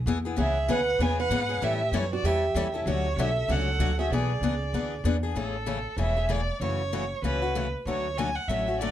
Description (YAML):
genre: acoustic string swing (jazz manouche)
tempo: 192 BPM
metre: 4/4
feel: swing 59% on 8ths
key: A major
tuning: A4 = 440 Hz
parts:
  - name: upright bass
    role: bass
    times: 0.0-8.9 s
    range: E1 to A2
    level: -29 LUFS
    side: right 1 dB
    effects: none
  - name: picked steel-string acoustic guitar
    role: accompaniment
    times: 0.1-8.9 s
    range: C#3 to A4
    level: -30 LUFS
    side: left 5 dB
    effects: none
  - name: warm violin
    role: melody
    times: 0.4-8.9 s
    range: G#4 to G#5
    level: -30 LUFS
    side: right 1 dB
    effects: none
  - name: picked acoustic archtop guitar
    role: second line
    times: 0.4-5.0 s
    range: E4 to B4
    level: -31 LUFS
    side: right 4 dB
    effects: none
room: moderate club reverb, RT60 0.5 s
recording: dark, warm production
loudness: -25 LUFS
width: side -11 dB against mid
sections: 0.0-5.4 A section; 5.4-8.9 B section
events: none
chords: 0.4 C#m7; 1.6 A7; 2.9 Dmaj7; 4.1 E7; 5.4 Amaj7; 6.6 F#m7; 7.9 Dmaj7